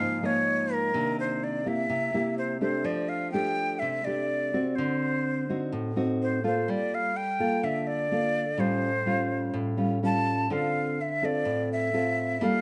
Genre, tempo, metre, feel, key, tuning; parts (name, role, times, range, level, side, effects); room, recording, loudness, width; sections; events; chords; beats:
bossa nova; 126 BPM; 4/4; straight; A4 = 441 Hz
breathy jazz flute; melody; 0.0-12.6 s; Bb4 to A5; -31 LUFS; equal
nylon-string guitar; accompaniment; 0.0-12.6 s; Ab2 to A4; -30 LUFS; equal
moderate large studio reverb, RT60 1.4 s; nothing above 10.3 kHz; -28 LUFS; mono
0.0-2.9 A section; 2.9-12.6 B section
0.0 Db69; 0.9 Cm9; 1.9 C7; 2.9 F69; 4.8 D7b9; 6.7 Gm9; 8.6 A7alt; 10.5 Dm7
0.00 0.47 | 0.95 1.43 1.90 2.38 | 2.86 3.33 3.81 4.29 | 4.77 5.25 5.72 6.20 | 6.68 7.16 7.64 8.11 | 8.59 9.07 9.55 10.03 | 10.51 10.98 11.46 11.94 | 12.42